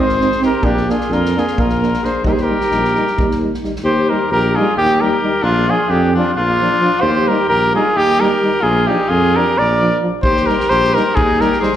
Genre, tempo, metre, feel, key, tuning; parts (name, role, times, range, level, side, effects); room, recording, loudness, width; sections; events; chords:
balkan folk, Balkan brass band; 263 BPM (eighths); 7/8; straight; Eb major; A4 = 443 Hz
warm cornet; melody; 0.0-11.8 s; F4 to D5; -16 LUFS; left 1 dB; plate reverb, slapback echo
clear alto saxophone; second line; 0.0-11.8 s; D4 to Bb4; -21 LUFS; left 2 dB; plate reverb, slapback echo
clear euphonium; accompaniment; 0.0-11.7 s; D4 to Eb4; -25 LUFS; left 4 dB; plate reverb, slapback echo
dark euphonium; accompaniment; 0.0-11.7 s; F3 to C4; -22 LUFS; right 4 dB; plate reverb, slapback echo
mellow tuba; bass; 0.0-11.5 s; Ab1 to F2; -18 LUFS; equal
unplugged drum kit; percussion; 0.1-3.8, 10.2-11.8 s; kick drum, snare drum; -23 LUFS; equal
moderate club reverb, RT60 0.8 s; live gig heard through the venue's PA, recital hall reverb; -13 LUFS; side -10 dB against mid
0.0-3.8 A section; 3.8-11.8 B section
0.0 Ab; 0.6 Bb; 2.2 Eb; 5.4 Bb; 7.0 Eb; 8.6 Bb; 10.2 Eb